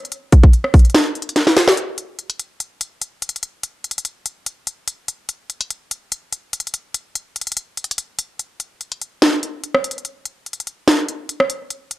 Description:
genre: hip hop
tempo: 145 BPM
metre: 4/4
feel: half-time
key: none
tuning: none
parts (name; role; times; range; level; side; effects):
- trap drum kit; drums; 0.0-12.0 s; hi-hat, kick drum, rim click, snare drum; -14 LUFS; equal; none
room: light reverb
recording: dark, warm production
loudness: -17 LUFS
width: side -17 dB against mid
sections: 0.0-1.8 A section; 1.8-8.4 B section; 8.4-12.0 C section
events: drum fill 1.4-1.8; kick muted 8.4-12.0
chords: none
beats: | 0.12 0.53 0.95 1.36 | 1.77 2.19 2.60 3.02 | 3.43 3.84 4.26 4.67 | 5.08 5.50 5.91 6.33 | 6.74 7.15 7.57 7.98 | 8.39 8.81 9.22 9.63 | 10.05 10.46 10.88 11.29 | 11.70

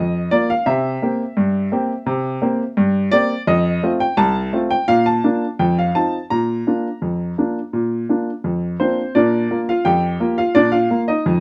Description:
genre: ragtime piano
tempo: 85 BPM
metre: 2/4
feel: straight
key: Bb major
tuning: A4 = 441 Hz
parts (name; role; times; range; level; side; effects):
- clear upright piano; solo; 0.0-11.4 s; C2 to Bb5; -18 LUFS; equal; none
room: moderate studio ambience, RT60 0.5 s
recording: none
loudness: -18 LUFS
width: mono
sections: 0.0-9.2 A section; 9.2-11.4 A section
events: none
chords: 0.0 Bb5; 0.7 C7; 3.5 F; 4.9 Bb; 5.6 F7; 6.3 Bb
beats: | 0.67 1.37 | 2.08 2.78 | 3.48 4.19 | 4.89 5.60 | 6.31 7.02 | 7.74 8.45 | 9.16 9.86 | 10.57 11.27

